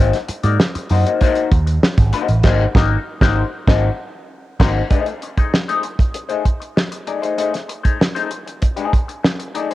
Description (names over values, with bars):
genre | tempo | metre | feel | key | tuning
funk | 97 BPM | 4/4 | straight | unclear | A4 = 440 Hz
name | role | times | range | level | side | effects
vintage hollow-body jazz guitar | accompaniment | 0.0-9.7 s | A3 to D5 | -21 LUFS | left 6 dB | wah, cassette tape
picked electric bass with an envelope filter | bass | 0.0-4.8 s | Ab1 to Ab2 | -16 LUFS | right 1 dB | none
damped 70s drum kit | drums | 0.1-9.7 s | crash cymbal, hi-hat, kick drum, snare drum | -16 LUFS | right 1 dB | cassette tape
room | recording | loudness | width
light reverb, studio ambience | home recording on cassette | -15 LUFS | side -16 dB against mid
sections
0.0-4.9 A section; 4.9-9.7 B section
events
band accent 2.4-4.9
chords
0.0 Ab9; 4.9 Adim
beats
0.59 1.21 1.82 | 2.44 3.06 3.67 4.29 | 4.91 5.53 6.14 6.76 | 7.38 8.00 8.62 9.24